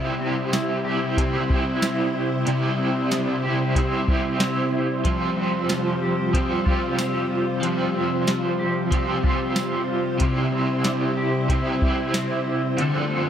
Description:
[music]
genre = dream pop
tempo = 93 BPM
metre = 4/4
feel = straight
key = unclear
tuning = A4 = 440 Hz
[part]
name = overdriven semi-hollow guitar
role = accompaniment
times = 0.0-13.3 s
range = C3 to A4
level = -25 LUFS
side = right 3 dB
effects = tremolo, ensemble chorus
[part]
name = soft string machine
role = sustained chords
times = 0.0-13.3 s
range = C3 to C5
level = -26 LUFS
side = left 1 dB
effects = ensemble chorus
[part]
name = mellow electric guitar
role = arpeggios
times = 0.0-13.3 s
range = C3 to G4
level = -26 LUFS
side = left 2 dB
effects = lush chorus, digital delay
[part]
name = soft vintage rhythm box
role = drums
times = 0.5-12.9 s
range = hi-hat, kick drum, snare drum, tambourine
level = -24 LUFS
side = equal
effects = none
[sound]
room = light reverb, digital ambience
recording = none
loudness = -20 LUFS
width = side -9 dB against mid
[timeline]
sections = 0.0-13.3 A section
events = none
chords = 0.0 C; 5.0 Fsus2; 10.2 C; 12.8 Dm7

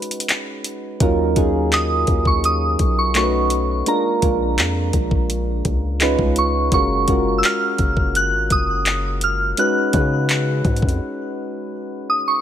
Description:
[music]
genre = contemporary R&B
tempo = 84 BPM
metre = 4/4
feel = straight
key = unclear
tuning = A4 = 440 Hz
[part]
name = soft synth bell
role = melody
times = 0.0-12.4 s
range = Bb5 to Gb6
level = -21 LUFS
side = right 1 dB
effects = chorus, ping-pong delay
[part]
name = soft electric-piano-like synth keys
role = accompaniment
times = 0.0-12.4 s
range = Gb3 to Cb5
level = -22 LUFS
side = right 1 dB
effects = chorus
[part]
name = smooth R&B drum kit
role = drums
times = 0.0-11.0 s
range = handclaps, hi-hat, kick drum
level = -20 LUFS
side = left 1 dB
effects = none
[part]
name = long sustained 808-style bass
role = bass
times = 1.0-11.0 s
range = Gb1 to Db3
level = -22 LUFS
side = left 1 dB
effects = none
[sound]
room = digital ambience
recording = none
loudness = -16 LUFS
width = side -10 dB against mid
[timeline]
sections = 0.0-12.4 A section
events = break 0.0-1.0, 11.0-12.4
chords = 0.0 Db7sus4; 1.0 Ebm7; 3.1 B9; 3.9 Bb7; 6.0 Db7; 6.7 Gbmaj7; 9.6 Db7sus4

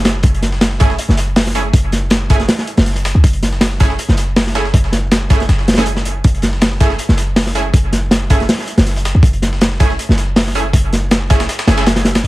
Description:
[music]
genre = drum and bass, jungle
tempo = 160 BPM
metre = 4/4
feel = straight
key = F# minor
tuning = A4 = 440 Hz
[part]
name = warm 808-style bass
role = bass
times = 0.0-12.3 s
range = F#1 to C#2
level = -16 LUFS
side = equal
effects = none
[part]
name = crunchy breakbeat drum kit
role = drums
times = 0.0-12.3 s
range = hi-hat, kick drum, snare drum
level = -13 LUFS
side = equal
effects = high-pass filter on kick, high-pass filter on hats, high-pass filter on snare, high-pass filter on room
[part]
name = breakbeat sampler-style drum kit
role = drums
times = 0.1-12.2 s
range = hi-hat, snare drum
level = -25 LUFS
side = left 1 dB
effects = high-pass filter on snare, high-pass filter on hats, high-pass filter on room
[part]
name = orchestra-hit-like synth stab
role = stabs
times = 0.8-11.8 s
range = A3 to G#4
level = -22 LUFS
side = right 3 dB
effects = built-in reverb, dub echo
[sound]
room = studio reverb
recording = vinyl crackle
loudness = -11 LUFS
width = side -18 dB against mid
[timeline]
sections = 0.0-12.2 A section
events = drop 0.0-12.2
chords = 0.0 F#m7

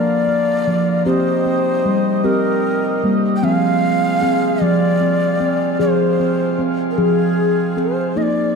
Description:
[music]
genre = world meditative, meditative tuned percussion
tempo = 51 BPM (dotted quarters)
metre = 6/8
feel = straight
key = F dorian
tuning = A4 = 440 Hz
[part]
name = breathy mellow Native American-style cedar flute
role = melody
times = 0.0-8.6 s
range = Ab4 to G5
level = -20 LUFS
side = left 2 dB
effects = shimmer reverb, ping-pong delay
[part]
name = mellow accordion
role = sustained chords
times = 0.0-8.1 s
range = C3 to F4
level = -25 LUFS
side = equal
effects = shimmer reverb
[part]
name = steel tongue drum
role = arpeggios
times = 0.0-8.6 s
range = F3 to Bb4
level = -17 LUFS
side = right 1 dB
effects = shimmer reverb
[sound]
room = wet scoring stage reverb, RT60 1.5 s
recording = dark, warm production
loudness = -14 LUFS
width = side -5 dB against mid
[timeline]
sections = 0.0-8.2 A section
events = none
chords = 0.0 Bb; 1.1 Cm; 3.4 Fm

